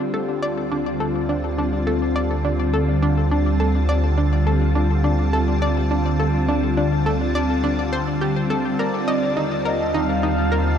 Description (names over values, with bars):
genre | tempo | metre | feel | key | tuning
ambient | 104 BPM | 4/4 | straight | D phrygian | A4 = 439 Hz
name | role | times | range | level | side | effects
evolving wavetable pad | sustained chords | 0.0-10.8 s | D3 to A5 | -21 LUFS | equal | ensemble chorus, built-in reverb, phaser, shimmer reverb
analog pluck | riff | 0.0-10.6 s | D4 to Eb5 | -25 LUFS | equal | chorus, shimmer reverb, ping-pong delay
round analog bass | bass | 0.0-10.8 s | D2 to Eb2 | -23 LUFS | equal | none
pulse-width lead | melody | 8.8-10.8 s | D5 to F5 | -25 LUFS | equal | chorus, shimmer reverb, ping-pong delay
room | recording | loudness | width
moderate huge ambient reverb, RT60 8.7 s | none | -18 LUFS | side -8 dB against mid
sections
0.0-10.8 A section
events
none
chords
0.0 Dm; 8.8 Eb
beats
0.14 0.71 1.29 | 1.87 2.44 3.02 3.60 | 4.17 4.75 5.33 5.91 | 6.48 7.06 7.64 8.21 | 8.79 9.37 9.94 10.52